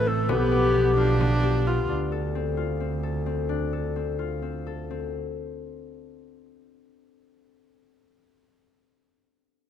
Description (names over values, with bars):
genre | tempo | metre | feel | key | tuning
contemporary instrumental, chamber music in an uneven meter | 262 BPM (eighths) | 7/8 | straight | D dorian | A4 = 440 Hz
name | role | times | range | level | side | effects
dark clarinet | melody | 0.0-1.4 s | G4 to A4 | -26 LUFS | left 1 dB | none
warm viola | second line | 0.0-1.9 s | A3 to F4 | -29 LUFS | right 2 dB | none
warm woodwind section | sustained chords | 0.0-1.9 s | C3 to G4 | -33 LUFS | equal | none
concert harp | arpeggios | 0.0-7.9 s | B3 to A4 | -29 LUFS | left 10 dB | none
warm double bass | bass | 0.0-5.1 s | A1 to D2 | -27 LUFS | right 3 dB | none
frame drum | percussion | 0.3-1.4 s | none | -36 LUFS | left 3 dB | none
room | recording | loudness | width
wet recital hall reverb, RT60 1.6 s | close, detailed microphones | -23 LUFS | side -9 dB against mid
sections
0.0-1.9 A section; 1.9-5.1 B section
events
slowing down 1.9-5.1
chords
0.3 G7/B; 1.9 Dm7